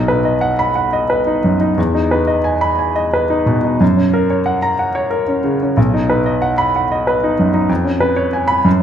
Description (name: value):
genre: classical, romantic character piece for solo piano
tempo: 61 BPM (dotted quarters)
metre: 6/8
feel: uneven beats, rubato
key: B major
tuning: A4 = 440 Hz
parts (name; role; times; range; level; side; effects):
- clear baby grand piano; solo; 0.0-8.8 s; B1 to B5; -13 LUFS; equal; none
room: wet recital hall reverb, RT60 1.5 s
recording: none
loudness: -13 LUFS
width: side -9 dB against mid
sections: 0.0-8.8 A section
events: none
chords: 0.0 B; 1.8 Emaj7; 3.8 F#; 5.8 B; 7.7 C#7/E#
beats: 0.76 | 1.77 2.79 | 3.81 4.79 | 5.77 6.75 | 7.70 8.65